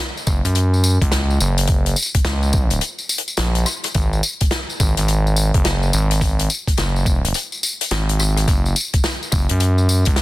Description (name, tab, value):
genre	glitch hop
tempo	106 BPM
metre	4/4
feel	swing 63% on 16ths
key	unclear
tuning	A4 = 440 Hz
part	warm soul drum kit	drums	0.2-10.2 s	hi-hat, rim click, snare drum, tambourine	-22 LUFS	left 2 dB	none
part	gritty driven synth bass	bass	0.3-10.2 s	F#1 to F#2	-17 LUFS	equal	none
part	electronic kick drum	drums	0.3-10.2 s	none	-19 LUFS	equal	none
room	little or no reverb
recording	dense, heavily limited modern master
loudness	-16 LUFS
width	side -17 dB against mid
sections	0.0-10.2 A section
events	none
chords	none